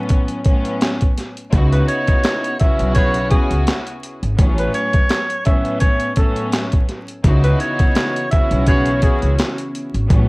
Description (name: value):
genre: hip hop, boom-bap hip-hop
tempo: 84 BPM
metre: 4/4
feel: swing 55% on 16ths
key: C# minor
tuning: A4 = 441 Hz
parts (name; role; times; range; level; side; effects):
- warm studio string section; accompaniment; 0.0-10.3 s; A2 to F#4; -22 LUFS; left 1 dB; high-pass filter, low-pass filter, plate reverb
- boom bap sampler-style drum kit; drums; 0.1-10.3 s; handclaps, hi-hat, kick drum, snare drum; -16 LUFS; equal; none
- upright bass; bass; 1.5-10.3 s; G#1 to C#2; -17 LUFS; equal; none
- breathy tenor saxophone; melody; 1.7-9.4 s; G#4 to E5; -22 LUFS; right 1 dB; high-pass filter, low-pass filter, tape echo, plate reverb
- warm horn section; stabs; 2.9-3.2, 8.7-8.9 s; F#4 to B4; -30 LUFS; right 1 dB; high-pass filter, low-pass filter, tape echo, plate reverb
- dark analog pad; sustained chords; 7.2-10.3 s; C#3 to F#4; -30 LUFS; equal; none
room: light reverb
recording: worn, warbling old tape, cassette tape, vinyl crackle, warbly pitch drift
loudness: -15 LUFS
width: side -26 dB against mid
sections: 0.0-10.3 A section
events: break 0.0-1.5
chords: 0.0 A69; 1.5 C#m11; 4.4 A69; 7.2 C#m11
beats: 0.10 0.81 | 1.53 2.24 2.96 3.67 | 4.38 5.10 5.81 6.53 | 7.24 7.96 8.67 9.38 | 10.10